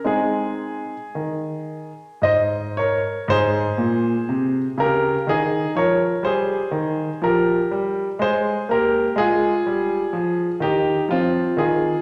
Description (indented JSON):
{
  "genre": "classical, baroque-style suite movement for grand piano",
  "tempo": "54-63 BPM",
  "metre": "3/4",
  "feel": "rubato",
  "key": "Ab major",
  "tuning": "A4 = 440 Hz",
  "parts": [
    { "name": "clear grand piano", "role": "solo", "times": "0.0-12.0 s", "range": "Ab2 to Eb5", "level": "-21 LUFS", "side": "equal", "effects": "none" }
  ],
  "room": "wet recital hall reverb, RT60 1.5 s",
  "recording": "none",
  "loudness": "-21 LUFS",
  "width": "mono",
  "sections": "0.0-3.3 A section; 3.3-12.0 B section",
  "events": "none",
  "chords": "0.0 Ab; 6.2 Eb; 8.2 Ab; 9.2 Fm"
}